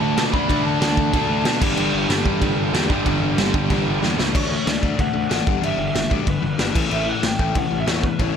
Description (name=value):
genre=punk rock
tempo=187 BPM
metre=4/4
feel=straight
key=unclear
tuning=A4 = 440 Hz
part: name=lead guitar through a small cranked amp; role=melody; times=0.0-1.6, 4.3-8.3 s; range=B4 to B5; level=-26 LUFS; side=left 1 dB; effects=overdrive
part: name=biting overdriven guitar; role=riff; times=0.0-8.3 s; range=G2 to D4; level=-25 LUFS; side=left 14 dB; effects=none
part: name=crunchy overdriven guitar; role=riff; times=0.0-4.8 s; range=G2 to D4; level=-25 LUFS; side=right 13 dB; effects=none
part: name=distorted electric guitar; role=riff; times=0.0-4.2 s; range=G2 to D4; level=-26 LUFS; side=right 2 dB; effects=distortion
part: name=fuzz picked electric bass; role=bass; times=0.0-8.3 s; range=G1 to B2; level=-26 LUFS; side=right 1 dB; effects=overdrive
part: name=raw garage drum kit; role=drums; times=0.2-8.3 s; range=crash cymbal, kick drum, snare drum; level=-22 LUFS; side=right 1 dB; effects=none
room=little or no reverb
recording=none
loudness=-18 LUFS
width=side -7 dB against mid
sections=0.0-4.3 A section; 4.3-8.4 B section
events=drum fill 4.0-4.3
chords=0.0 D5; 1.6 G5; 4.3 D; 5.5 G; 6.8 A5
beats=0.17 | 0.49 0.81 1.13 1.45 | 1.77 2.10 2.42 2.74 | 3.06 3.38 3.70 4.02 | 4.34 4.66 4.98 5.30 | 5.62 5.95 6.27 6.59 | 6.91 7.23 7.55 7.87 | 8.20